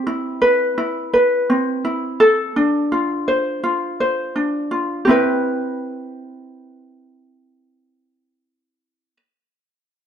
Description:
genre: pop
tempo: 84 BPM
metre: 4/4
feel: straight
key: C major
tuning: A4 = 439 Hz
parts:
  - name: ukulele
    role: accompaniment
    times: 0.0-9.2 s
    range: C4 to C5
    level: -17 LUFS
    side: equal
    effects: none
room: wet studio reverb, RT60 0.8 s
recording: dark, warm production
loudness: -16 LUFS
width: side -8 dB against mid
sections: 0.0-5.1 A section; 5.1-7.9 B section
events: none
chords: 0.0 Cmaj7; 2.2 Dm7; 5.1 Cmaj7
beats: 0.06 0.78 1.49 | 2.21 2.92 3.64 4.35 | 5.07 5.78 6.50 7.21

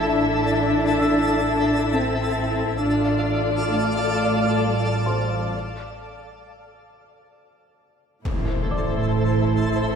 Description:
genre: cinematic, suspense film score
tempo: 66 BPM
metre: 3/4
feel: straight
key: A minor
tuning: A4 = 439 Hz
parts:
  - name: muted studio violin section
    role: melody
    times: 0.0-10.0 s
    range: C5 to E5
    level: -30 LUFS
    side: left 6 dB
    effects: none
  - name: muted symphonic viola section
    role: accompaniment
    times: 0.0-10.0 s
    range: E4 to A4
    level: -27 LUFS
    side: equal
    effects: none
  - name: twinkling granular texture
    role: sustained chords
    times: 0.0-10.0 s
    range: A4 to A5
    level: -26 LUFS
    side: left 1 dB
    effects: built-in reverb
  - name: muted chamber cello section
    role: bass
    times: 0.0-10.0 s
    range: A2 to D4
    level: -24 LUFS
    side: equal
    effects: none
  - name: muted symphonic double bass section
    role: bass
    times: 0.0-10.0 s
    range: A1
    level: -26 LUFS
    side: right 3 dB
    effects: none
  - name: warm concert grand piano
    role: texture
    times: 0.0-10.0 s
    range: C5 to E6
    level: -34 LUFS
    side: left 1 dB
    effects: none
  - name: impact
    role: sound effects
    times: 8.3-10.0 s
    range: none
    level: -28 LUFS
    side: left 1 dB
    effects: none
room: moderate scoring stage reverb, RT60 1.7 s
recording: minimal, uncompressed stereo recording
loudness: -19 LUFS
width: side -7 dB against mid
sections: 0.0-8.3 A section; 8.3-10.0 A section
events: break 5.5-8.3; impact 8.3-10.0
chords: 0.0 Am; 2.8 Dm/A; 5.5 N.C.; 8.3 Am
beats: | 0.07 0.98 1.89 | 2.80 3.71 4.62 | 5.53 6.44 7.35 | 8.26 9.17

